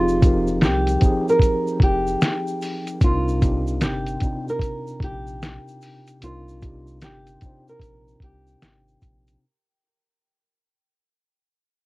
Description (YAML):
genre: lo-fi hip hop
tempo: 75 BPM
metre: 4/4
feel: swing 64% on 16ths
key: C minor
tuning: A4 = 439 Hz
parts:
  - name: flamenco guitar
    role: melody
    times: 0.0-9.4 s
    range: F4 to Bb4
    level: -24 LUFS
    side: equal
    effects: low-pass filter, cassette tape
  - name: mellow tine electric piano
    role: accompaniment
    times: 0.0-9.4 s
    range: C3 to C5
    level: -27 LUFS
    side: equal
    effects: medium stereo tremolo, cassette tape, low-pass filter
  - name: soft dub sub bass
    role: bass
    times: 0.0-9.4 s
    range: F1 to C2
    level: -27 LUFS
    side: equal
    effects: none
  - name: tube shaker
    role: percussion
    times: 0.1-9.4 s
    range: none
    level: -47 LUFS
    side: right 5 dB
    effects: none
  - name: lo-fi sampler-style drum kit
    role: drums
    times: 0.2-9.4 s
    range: hi-hat, kick drum, snare drum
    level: -19 LUFS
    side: equal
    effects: none
room: little or no reverb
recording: home recording on cassette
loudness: -19 LUFS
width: side -21 dB against mid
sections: 0.0-9.4 A section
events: fade-out 0.0-9.4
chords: 0.0 Fm9; 3.0 Cm9; 6.2 Cm11